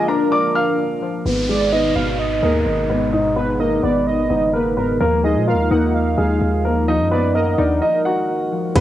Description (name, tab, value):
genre	hip hop, trap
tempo	128 BPM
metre	4/4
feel	half-time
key	Eb harmonic minor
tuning	A4 = 441 Hz
part	dark grand piano	melody	0.0-8.8 s	Ab3 to F6	-20 LUFS	equal	low-pass filter, cassette tape, analog delay
part	warm velvety synth lead	second line	0.0-8.7 s	Bb4 to Gb5	-23 LUFS	right 6 dB	chorus, analog delay
part	warbly lo-fi synth keys	accompaniment	0.0-8.8 s	Ab2 to F4	-22 LUFS	left 6 dB	chorus, low-pass filter
part	dark analog pad	sustained chords	0.0-8.7 s	Cb3 to Gb5	-29 LUFS	right 2 dB	chorus, low-pass filter
part	long sustained 808-style bass	bass	1.3-8.8 s	Gb1 to Bb2	-22 LUFS	equal	none
part	downlifter and impact	sound effects	1.3-5.0, 8.8 s	none	-30 LUFS	equal	none
part	trap drum kit	drums	8.8 s	crash cymbal, hi-hat, kick drum	-12 LUFS	equal	none
room	light reverb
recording	home recording on cassette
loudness	-16 LUFS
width	side -12 dB against mid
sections	0.0-1.3 A section; 1.3-8.8 B section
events	break 0.0-1.3, 7.8-8.8; filter sweep 1.3-8.8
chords	0.0 Bb7; 1.3 Abm; 5.0 Ebmadd9